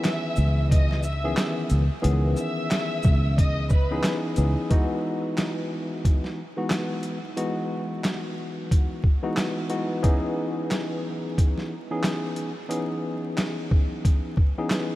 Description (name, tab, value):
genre	hip hop, boom-bap hip-hop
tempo	90 BPM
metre	4/4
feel	swing 58% on 16ths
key	E major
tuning	A4 = 440 Hz
part	dark studio violin section	melody	0.0-4.0 s	B4 to E6	-33 LUFS	equal	high-pass filter, low-pass filter, tape echo
part	tine electric piano	accompaniment	0.0-15.0 s	D#3 to G#4	-28 LUFS	left 1 dB	medium stereo tremolo, high-pass filter, low-pass filter
part	boom bap sampler-style drum kit	drums	0.0-14.9 s	handclaps, hi-hat, kick drum, shaker, snare drum	-25 LUFS	equal	none
part	fingered electric bass	bass	0.4-4.5 s	C#2	-22 LUFS	equal	none
room	light reverb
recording	vinyl crackle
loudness	-22 LUFS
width	side -16 dB against mid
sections	0.0-4.7 A section; 4.7-15.0 B section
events	none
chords	0.0 C#m9; 4.7 Emaj9; 10.0 C#m9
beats	0.04 0.71 1.37 | 2.04 2.71 3.37 4.04 | 4.71 5.37 6.04 6.71 | 7.37 8.04 8.71 9.37 | 10.04 10.71 11.37 12.04 | 12.71 13.37 14.04 14.71